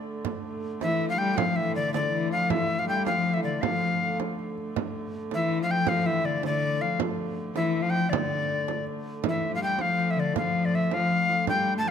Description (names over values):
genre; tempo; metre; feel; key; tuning
medieval dance; 107 BPM (dotted quarters); 6/8; straight; D minor; A4 = 440 Hz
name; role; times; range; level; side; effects
dark hurdy-gurdy; drone; 0.0-11.9 s; D3 to A3; -35 LUFS; right 2 dB; none
frame drum; percussion; 0.2-11.7 s; none; -33 LUFS; right 9 dB; none
tenor recorder; melody; 0.8-11.9 s; D5 to A5; -27 LUFS; left 1 dB; none
dark viola da gamba; second line; 0.8-11.9 s; D3 to A3; -28 LUFS; left 4 dB; none
room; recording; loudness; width
moderate concert hall reverb, RT60 1.8 s; close, detailed microphones; -24 LUFS; side -8 dB against mid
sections
0.3-9.2 A section; 9.2-11.9 B section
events
none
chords
none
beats
| 0.25 0.81 | 1.38 1.94 | 2.50 3.06 | 3.62 4.19 | 4.75 5.31 | 5.87 6.43 | 6.99 7.55 | 8.11 8.67 | 9.23 9.79 | 10.35 10.90 | 11.46